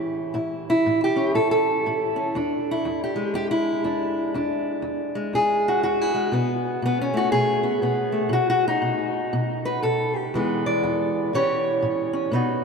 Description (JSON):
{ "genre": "acoustic country blues, solo or duo", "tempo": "120 BPM", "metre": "4/4", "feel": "swing 61% on 8ths", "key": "E mixolydian", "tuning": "A4 = 440 Hz", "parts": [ { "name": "fingerpicked steel-string acoustic guitar", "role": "solo", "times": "0.0-12.6 s", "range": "E2 to D5", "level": "-21 LUFS", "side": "equal", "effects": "none" } ], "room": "wet cathedral reverb, RT60 6.0 s", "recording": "in a vast, echoing space", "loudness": "-21 LUFS", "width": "side -5 dB against mid", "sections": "0.0-12.6 A section", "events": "none", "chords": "0.0 A7; 2.4 E7; 6.3 B7; 10.3 E7; 11.3 A7" }